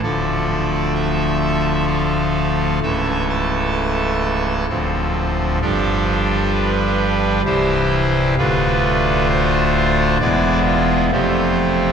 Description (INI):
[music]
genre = classical, chorale-style piece for pipe organ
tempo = 65 BPM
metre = 3/4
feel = rubato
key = unclear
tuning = A4 = 442 Hz
[part]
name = pipe organ, trumpet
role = solo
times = 0.0-11.9 s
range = C1 to A5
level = -16 LUFS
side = equal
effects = none
[sound]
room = wet cathedral reverb, RT60 5.1 s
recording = dark, warm production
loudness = -16 LUFS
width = side -7 dB against mid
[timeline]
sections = 0.0-11.9 A section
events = none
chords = 0.0 Dm; 2.8 A/C#; 4.7 Dm7; 5.6 G7; 7.5 C; 8.4 Dm; 10.2 E7; 11.1 F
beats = | 0.04 0.96 1.89 | 2.84 3.79 4.71 | 5.62 6.54 7.46 | 8.38 9.30 10.21 | 11.13